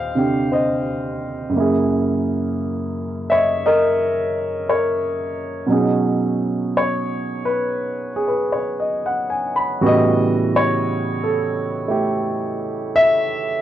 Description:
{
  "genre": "jazz ballad",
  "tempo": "58 BPM",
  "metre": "4/4",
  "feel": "swing 66% on 8ths",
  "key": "B major from 5.7 s",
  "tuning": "A4 = 437 Hz",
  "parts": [
    { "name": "warm grand piano", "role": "solo", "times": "0.0-13.6 s", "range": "Eb2 to B5", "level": "-18 LUFS", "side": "equal", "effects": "none" }
  ],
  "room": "little or no reverb",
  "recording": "dry, close 1970s-style studio recording",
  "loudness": "-18 LUFS",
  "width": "side -11 dB against mid",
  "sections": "0.0-5.7 A section; 5.7-13.6 B section",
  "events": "none",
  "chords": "0.0 Eb6; 1.5 Gb7; 5.7 B6; 9.8 A13"
}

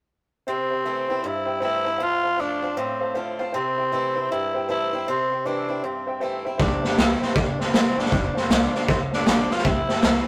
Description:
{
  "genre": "rockabilly",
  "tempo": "157 BPM",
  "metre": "4/4",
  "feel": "swing 63% on 8ths",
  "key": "C major",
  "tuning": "A4 = 440 Hz",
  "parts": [
    { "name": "growling tenor saxophone", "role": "melody", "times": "0.5-10.3 s", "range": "C4 to F4", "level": "-28 LUFS", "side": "equal", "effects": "none" },
    { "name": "honky-tonk upright piano", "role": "accompaniment", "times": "0.5-10.2 s", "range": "C5 to C6", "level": "-34 LUFS", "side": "equal", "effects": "none" },
    { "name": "picked swing-style acoustic guitar", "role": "accompaniment", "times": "0.5-10.3 s", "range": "F2 to F4", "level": "-33 LUFS", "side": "equal", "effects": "none" },
    { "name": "upright bass", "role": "bass", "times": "6.6-10.2 s", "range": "F1 to G2", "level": "-35 LUFS", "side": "equal", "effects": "none" },
    { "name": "raw garage drum kit", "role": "drums", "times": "6.6-10.1 s", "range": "hi-hat, kick drum, snare drum", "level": "-22 LUFS", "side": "equal", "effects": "none" }
  ],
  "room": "light reverb",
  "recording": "rough rehearsal-room recording, warm saturation",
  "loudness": "-23 LUFS",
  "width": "mono",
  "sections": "0.5-6.6 A section; 6.6-10.3 B section",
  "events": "none",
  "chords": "0.5 C6; 2.0 F6; 3.5 C6; 8.1 F6; 9.6 C6"
}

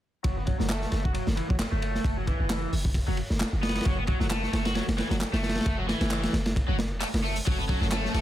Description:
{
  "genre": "breakbeat, breaks",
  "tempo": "133 BPM",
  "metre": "4/4",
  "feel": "swing 56% on 16ths",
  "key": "F# minor",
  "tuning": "A4 = 440 Hz",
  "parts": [
    { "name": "cranked stack guitar", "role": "riff", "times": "0.2-8.2 s", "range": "E3 to F#4", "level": "-32 LUFS", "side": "equal", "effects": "overdrive, tube saturation, vintage 12-bit sampler grit, low-pass filter, dub echo" },
    { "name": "warm 808-style bass", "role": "bass", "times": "0.2-8.2 s", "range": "E1 to F#1", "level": "-30 LUFS", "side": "equal", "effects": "none" },
    { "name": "crunchy breakbeat drum kit", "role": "drums", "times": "0.2-8.2 s", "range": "hi-hat, kick drum, ride cymbal, snare drum", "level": "-28 LUFS", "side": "equal", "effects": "none" },
    { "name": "electronic handclaps", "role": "drums", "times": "0.7-8.0 s", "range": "none", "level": "-36 LUFS", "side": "equal", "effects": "none" },
    { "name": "rich studio string section", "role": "sustained chords", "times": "7.5-8.2 s", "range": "F#3 to A4", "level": "-36 LUFS", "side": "left 1 dB", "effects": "sidechain pumping" }
  ],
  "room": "studio ambience",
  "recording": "none",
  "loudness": "-25 LUFS",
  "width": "side -13 dB against mid",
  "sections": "0.2-8.2 A section",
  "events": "filter sweep on overdriven electric guitar 0.2-8.2",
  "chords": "0.2 F#m"
}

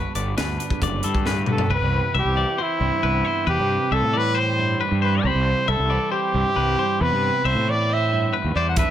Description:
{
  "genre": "math rock and midwest emo",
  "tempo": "136 BPM",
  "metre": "4/4",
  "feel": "straight",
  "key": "unclear",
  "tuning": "A4 = 440 Hz",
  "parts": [
    { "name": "twelve-string electric guitar", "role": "accompaniment", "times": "0.0-8.9 s", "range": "E2 to F#4", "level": "-28 LUFS", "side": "right 6 dB", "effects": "lush chorus" },
    { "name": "twangy electric guitar", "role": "arpeggios", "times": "0.0-8.9 s", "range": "A4 to B5", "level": "-27 LUFS", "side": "left 9 dB", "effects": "tape echo" },
    { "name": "fuzz fingered electric bass", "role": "bass", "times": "0.0-8.8 s", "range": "F#1 to A2", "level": "-24 LUFS", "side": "equal", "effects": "overdrive" },
    { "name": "crisp fusion drum kit", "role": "drums", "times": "0.2-1.7, 8.8-8.9 s", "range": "hi-hat, kick drum, snare drum, toms", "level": "-25 LUFS", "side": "equal", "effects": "none" },
    { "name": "warm trumpet", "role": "melody", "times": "1.5-8.9 s", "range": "E4 to F#5", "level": "-23 LUFS", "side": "equal", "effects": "none" }
  ],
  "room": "light reverb",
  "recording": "none",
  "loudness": "-19 LUFS",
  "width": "side -10 dB against mid",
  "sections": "0.0-1.7 A section; 1.7-8.9 B section",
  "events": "drum fill 1.3-1.7",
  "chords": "0.0 Gmaj7; 1.7 Cmaj7"
}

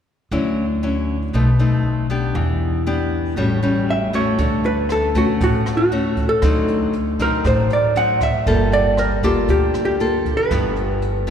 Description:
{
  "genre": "bossa nova",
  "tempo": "118 BPM",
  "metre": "4/4",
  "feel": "straight",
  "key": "D major",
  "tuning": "A4 = 440 Hz",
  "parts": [
    { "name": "nylon-string guitar", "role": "accompaniment", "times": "0.3-11.3 s", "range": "G2 to A4", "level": "-20 LUFS", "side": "left 2 dB", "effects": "none" },
    { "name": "upright bass", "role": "bass", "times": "0.3-11.3 s", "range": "G1 to E2", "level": "-22 LUFS", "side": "equal", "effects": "none" },
    { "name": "vintage hollow-body jazz guitar", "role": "melody", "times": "3.9-11.3 s", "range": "F#4 to F#5", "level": "-19 LUFS", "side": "right 1 dB", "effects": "none" },
    { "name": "jazz brush drum kit", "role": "drums", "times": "4.4-11.3 s", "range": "hi-hat, kick drum, rim click", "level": "-25 LUFS", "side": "right 1 dB", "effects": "none" }
  ],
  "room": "wet cathedral reverb, RT60 4.6 s",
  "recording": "recorded in a church or concert hall",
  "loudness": "-16 LUFS",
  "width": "side -8 dB against mid",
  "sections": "0.3-4.4 A section; 4.4-11.3 B section",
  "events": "none",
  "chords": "0.3 Dmaj9; 1.3 B7b9; 2.4 Em7; 3.4 A6; 4.4 Dmaj7; 6.4 D7b9; 8.5 Gm9; 10.5 G6"
}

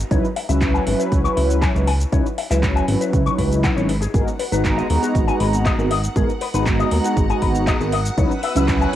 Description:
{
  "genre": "nu-disco, nu disco",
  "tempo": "119 BPM",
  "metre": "4/4",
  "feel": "straight",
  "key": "unclear",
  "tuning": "A4 = 441 Hz",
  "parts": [
    { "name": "chorused synth bass", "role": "bass", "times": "0.0-9.0 s", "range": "G#1 to D#2", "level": "-21 LUFS", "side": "equal", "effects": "tube saturation" },
    { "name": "house drum kit", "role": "drums", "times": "0.0-9.0 s", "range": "handclaps, hi-hat, shaker", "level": "-30 LUFS", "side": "right 1 dB", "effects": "cassette tape" },
    { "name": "mellow synth brass", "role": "accompaniment", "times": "0.1-9.0 s", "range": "F#3 to A#5", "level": "-21 LUFS", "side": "equal", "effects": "chorus, cassette tape, tape echo" },
    { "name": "electric guitar with an envelope filter", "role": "riff", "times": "0.1-8.9 s", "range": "F#4 to C#6", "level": "-26 LUFS", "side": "left 9 dB", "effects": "wide subtle chorus, low-pass filter, cassette tape, tape echo" },
    { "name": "electronic kick drum", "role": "drums", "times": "0.1-8.8 s", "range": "none", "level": "-21 LUFS", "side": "equal", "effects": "cassette tape" },
    { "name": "string machine, full ensemble", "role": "sustained chords", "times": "4.1-9.0 s", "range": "B4 to E6", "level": "-32 LUFS", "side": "right 1 dB", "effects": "ensemble chorus, sidechain pumping, cassette tape" }
  ],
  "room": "light reverb, digital ambience",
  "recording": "home recording on cassette",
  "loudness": "-16 LUFS",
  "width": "side -12 dB against mid",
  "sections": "0.0-9.0 A section",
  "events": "none",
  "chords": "0.1 C#m11; 4.1 G#m9; 8.2 C#m11"
}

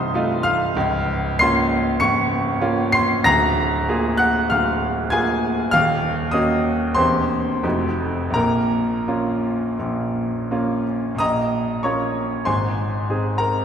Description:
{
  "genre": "classical, romantic character piece for solo piano",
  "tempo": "82-101 BPM",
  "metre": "4/4",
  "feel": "rubato",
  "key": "Bb minor",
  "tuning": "A4 = 440 Hz",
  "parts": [
    { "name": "bright grand piano", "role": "solo", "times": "0.0-13.6 s", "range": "C1 to Db7", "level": "-18 LUFS", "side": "equal", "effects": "none" }
  ],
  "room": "wet concert hall reverb, RT60 2.5 s",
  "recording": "recorded in a church or concert hall",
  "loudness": "-18 LUFS",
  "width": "side -8 dB against mid",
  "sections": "0.0-11.2 A section; 11.2-13.6 B section",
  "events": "none",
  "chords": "0.0 F7/C; 0.8 Bbm/Db; 3.3 Bb7/D; 5.7 Ebm7; 7.0 C7/E; 7.6 F7b9; 8.4 Bbm; 12.5 Ab"
}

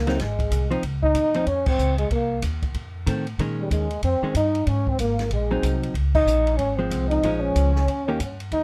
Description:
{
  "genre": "jazz, small-group swing and bop",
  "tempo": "188 BPM",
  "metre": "4/4",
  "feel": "swing 62% on 8ths",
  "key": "Ab major",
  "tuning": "A4 = 439 Hz",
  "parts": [
    { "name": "breathy trombone", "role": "melody", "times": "0.0-8.6 s", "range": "G3 to Eb4", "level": "-27 LUFS", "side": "equal", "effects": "none" },
    { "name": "trombone with cup mute", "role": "second line", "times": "0.0-8.4 s", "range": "G3 to Eb4", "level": "-33 LUFS", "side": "equal", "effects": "none" },
    { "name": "upright bass", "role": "bass", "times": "0.0-8.6 s", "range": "Ab1 to Bb2", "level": "-27 LUFS", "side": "equal", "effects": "none" },
    { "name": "hollow-body jazz guitar", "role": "accompaniment", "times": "0.1-8.2 s", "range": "Eb3 to G4", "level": "-28 LUFS", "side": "equal", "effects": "none" },
    { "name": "open jazz drum kit", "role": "drums", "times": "0.1-8.6 s", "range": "crash cymbal, hi-hat, kick drum, ride cymbal, snare drum", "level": "-33 LUFS", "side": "equal", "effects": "none" }
  ],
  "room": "little or no reverb",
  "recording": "close, detailed microphones",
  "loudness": "-23 LUFS",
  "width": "mono",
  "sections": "0.0-8.5 A section",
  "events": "band accent 1.6, 6.1",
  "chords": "0.2 Ab; 0.8 Dbmaj9; 2.1 Cm7; 2.7 F7; 3.4 Bbm11; 4.7 Ab7; 5.9 Dbmaj7; 7.2 Bbm7; 7.9 Eb7"
}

